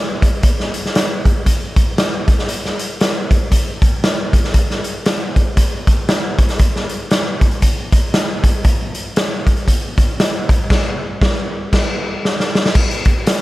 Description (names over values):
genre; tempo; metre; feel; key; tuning
soul; 117 BPM; 4/4; swing 59% on 8ths; none; none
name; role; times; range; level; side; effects
raw garage drum kit; drums; 0.2-13.4 s; crash cymbal, hi-hat, kick drum, snare drum; -14 LUFS; equal; none
room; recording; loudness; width
light reverb; none; -14 LUFS; side -18 dB against mid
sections
0.0-12.8 A section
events
band accent 10.7-12.8; drum fill 12.2-12.8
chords
none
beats
| 0.44 0.95 1.46 1.98 | 2.49 3.00 3.52 4.03 | 4.54 5.06 5.57 6.08 | 6.60 7.11 7.62 8.14 | 8.65 9.16 9.68 10.19 | 10.70 11.22 11.73 12.24 | 12.76 13.27